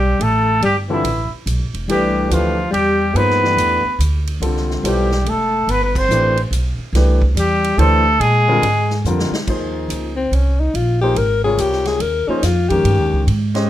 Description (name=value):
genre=modal jazz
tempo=142 BPM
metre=3/4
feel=swing 64% on 8ths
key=C major, Eb mixolydian from 9.5 s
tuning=A4 = 442 Hz
part: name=warm trumpet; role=melody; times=0.0-9.0 s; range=E4 to C5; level=-17 LUFS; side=right 1 dB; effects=none
part: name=clear alto saxophone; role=second line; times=0.0-13.3 s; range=E3 to Bb4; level=-20 LUFS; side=left 4 dB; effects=none
part: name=upright bass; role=bass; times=0.0-13.7 s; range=E1 to Bb2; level=-18 LUFS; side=right 1 dB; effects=none
part: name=swinging big-band drum kit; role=drums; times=0.2-13.6 s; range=crash cymbal, hi-hat, kick drum, ride cymbal, snare drum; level=-28 LUFS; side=right 1 dB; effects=none
part: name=warm concert grand piano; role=accompaniment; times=0.9-13.7 s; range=C3 to Eb5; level=-21 LUFS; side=left 1 dB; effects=none
room=light reverb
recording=close, detailed microphones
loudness=-14 LUFS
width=side -13 dB against mid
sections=0.0-9.5 A section; 9.5-13.7 B section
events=band accent 5.9; drum fill 9.1-9.5; alto saxophone solo 9.5-13.7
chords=0.0 Cmaj9; 8.2 Bb9; 9.5 Eb13sus4